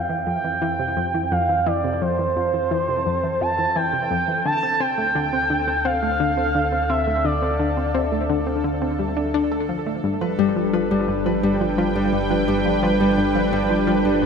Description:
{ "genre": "ambient, sequencer-driven space music", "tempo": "86 BPM", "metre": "4/4", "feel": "straight", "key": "unclear", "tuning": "A4 = 444 Hz", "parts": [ { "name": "expressive portamento lead", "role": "melody", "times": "0.0-8.3 s", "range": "C5 to A5", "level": "-22 LUFS", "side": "right 1 dB", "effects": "chorus, analog delay" }, { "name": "lush unison pad", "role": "sustained chords", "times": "0.2-14.3 s", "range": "D3 to A5", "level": "-26 LUFS", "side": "right 1 dB", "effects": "chorus" }, { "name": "analog pluck", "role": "riff", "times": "0.0-14.3 s", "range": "F2 to A4", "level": "-24 LUFS", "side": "left 1 dB", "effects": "chorus, analog delay" }, { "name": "round analog bass", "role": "bass", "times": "0.0-14.3 s", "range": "G1 to F2", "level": "-30 LUFS", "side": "right 1 dB", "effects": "none" }, { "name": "bubbling stepped-filter texture", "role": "texture", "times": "0.2-14.3 s", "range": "A4", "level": "-39 LUFS", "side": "right 6 dB", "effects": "chorus, built-in reverb" }, { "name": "Celtic harp", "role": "arpeggios", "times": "10.2-14.3 s", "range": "G3 to B4", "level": "-22 LUFS", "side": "moving between left 8 dB and equal", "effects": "auto-pan, analog delay" } ], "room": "wet lush hall reverb, RT60 2.7 s", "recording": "dreamy mix soaked in reverb", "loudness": "-19 LUFS", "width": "side -6 dB against mid", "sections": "0.0-14.3 A section", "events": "fade-in on analog synth pad 0.0-14.3; fade-in on synth texture 0.0-14.3", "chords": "0.0 F; 4.5 Dm; 10.0 G", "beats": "0.27 0.97 | 1.67 2.36 3.06 3.76 | 4.46 5.15 5.85 6.55 | 7.25 7.95 8.64 9.34 | 10.04 10.73 11.43 12.13 | 12.83 13.53 14.22" }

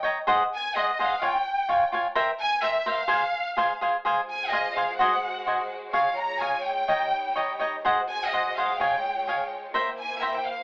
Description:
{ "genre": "mexican folk, mariachi", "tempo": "127 BPM", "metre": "2/4", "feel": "rubato", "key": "F minor", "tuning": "A4 = 441 Hz", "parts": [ { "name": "cavaquinho", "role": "accompaniment", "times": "0.0-10.4 s", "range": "F4 to Bb5", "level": "-24 LUFS", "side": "equal", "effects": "none" }, { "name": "rich studio violin section", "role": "melody", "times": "0.5-10.6 s", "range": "Eb5 to Bb5", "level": "-28 LUFS", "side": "equal", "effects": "none" }, { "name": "warm symphonic violin section", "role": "sustained chords", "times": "4.0-10.6 s", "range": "G3 to Db5", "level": "-36 LUFS", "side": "equal", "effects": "none" } ], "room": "wet studio reverb, RT60 0.5 s", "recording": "band playing live in one room, AM radio sound", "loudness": "-23 LUFS", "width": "side -26 dB against mid", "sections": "0.0-4.1 A section; 4.1-10.6 A section", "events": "none", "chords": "0.3 Ab7; 1.2 Db; 2.2 C7; 3.1 Fm; 5.0 Ab7; 5.9 Db; 6.9 Eb7; 7.9 Ab7; 8.8 Db; 9.8 C7", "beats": "| 0.27 0.75 | 1.23 1.70 | 2.16 2.62 | 3.10 3.57 | 4.05 4.53 | 5.00 5.46 | 5.94 6.41 | 6.89 7.37 | 7.86 8.34 | 8.81 9.29 | 9.75 10.22" }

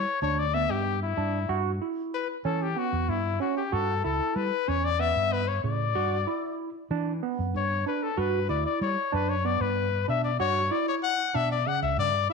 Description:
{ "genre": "progressive instrumental, band music in an uneven meter", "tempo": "189 BPM (eighths)", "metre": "7/8", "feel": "straight", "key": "G lydian", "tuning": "A4 = 440 Hz", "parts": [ { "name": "clear trumpet", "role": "melody", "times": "0.0-12.3 s", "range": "E4 to F#5", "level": "-27 LUFS", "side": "left 8 dB", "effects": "slapback echo" }, { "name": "fretless electric bass", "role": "bass", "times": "0.0-12.3 s", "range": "C#2 to G3", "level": "-30 LUFS", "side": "equal", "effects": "none" }, { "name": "barky tine electric piano", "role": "arpeggios", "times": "0.2-12.3 s", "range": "C#3 to F#4", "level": "-31 LUFS", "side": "right 8 dB", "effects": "phaser" } ], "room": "wet echo chamber reverb, RT60 1.2 s, studio reverb", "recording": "1960s-style stereo with parts hard left and right", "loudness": "-25 LUFS", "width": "side -4 dB against mid", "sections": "0.0-12.3 A section", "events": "trumpet solo 0.0-12.3", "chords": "0.0 Em7; 1.5 F#7(no3) (rootless); 6.0 Gmaj7; 10.4 Dmaj9", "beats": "0.22 0.54 0.86 1.18 | 1.50 1.82 2.13 2.45 2.77 3.09 3.41 | 3.73 4.04 4.36 4.68 5.00 5.32 5.64 | 5.95 6.27 6.59 6.91 7.23 7.54 7.86 | 8.18 8.50 8.81 9.13 9.45 9.77 10.08 | 10.40 10.72 11.04 11.35 11.67 11.99 12.30" }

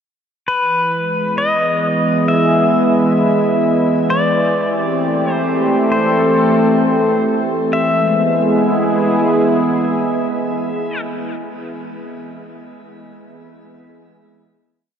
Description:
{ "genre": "ambient", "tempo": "66 BPM", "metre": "4/4", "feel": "straight", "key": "unclear", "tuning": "A4 = 441 Hz", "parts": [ { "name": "pedal steel guitar", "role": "melody", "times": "0.5-11.0 s", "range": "B4 to E5", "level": "-19 LUFS", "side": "left 2 dB", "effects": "shimmer reverb, ping-pong delay" }, { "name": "warm analog pad", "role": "sustained chords", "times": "0.5-11.5 s", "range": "E3 to A4", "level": "-15 LUFS", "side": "right 1 dB", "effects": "chorus, shimmer reverb" } ], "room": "wet huge ambient reverb, RT60 8.2 s", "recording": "worn, warbling old tape, cassette tape, warbly pitch drift", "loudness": "-13 LUFS", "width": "side -8 dB against mid", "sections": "0.5-7.7 A section; 7.7-11.4 final chord", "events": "none", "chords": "0.5 Emaj7; 4.1 Am7; 7.7 E", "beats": "| 0.46 1.37 2.28 3.19 | 4.10 5.00 5.91 6.82 | 7.73 8.64 9.55 10.46" }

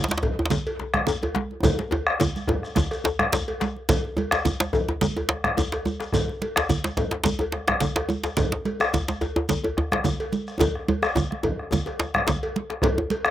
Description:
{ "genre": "west african traditional, West African drum ensemble", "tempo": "107 BPM", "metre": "4/4", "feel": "swing 54% on 16ths", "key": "none", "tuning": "none", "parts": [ { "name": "djembe", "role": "percussion", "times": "0.0-13.1 s", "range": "none", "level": "-26 LUFS", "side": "right 1 dB", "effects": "slapback echo" }, { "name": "congas", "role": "percussion", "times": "0.1-13.2 s", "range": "none", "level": "-28 LUFS", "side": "right 5 dB", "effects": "none" }, { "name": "djembe", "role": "percussion", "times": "0.1-13.3 s", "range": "none", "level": "-30 LUFS", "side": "left 4 dB", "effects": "none" }, { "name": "shekere", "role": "percussion", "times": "0.1-12.4 s", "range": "none", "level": "-35 LUFS", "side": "left 1 dB", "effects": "none" }, { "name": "bombo", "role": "percussion", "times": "0.2-13.3 s", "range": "none", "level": "-26 LUFS", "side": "left 1 dB", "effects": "none" }, { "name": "cowbell", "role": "percussion", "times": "0.2-13.2 s", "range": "none", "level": "-31 LUFS", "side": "equal", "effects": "slapback echo" } ], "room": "little or no reverb", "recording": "recorded outdoors, with no room sound", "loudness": "-22 LUFS", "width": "side -12 dB against mid", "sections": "0.0-3.9 A section; 3.9-12.8 B section", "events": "drum fill 1.6-3.9, 10.6-12.8", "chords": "none", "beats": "0.51 1.08 | 1.64 2.20 2.77 3.33 | 3.89 4.45 5.01 5.57 | 6.13 6.70 7.25 7.81 | 8.37 8.93 9.49 10.05 | 10.60 11.16 11.72 12.27 | 12.83" }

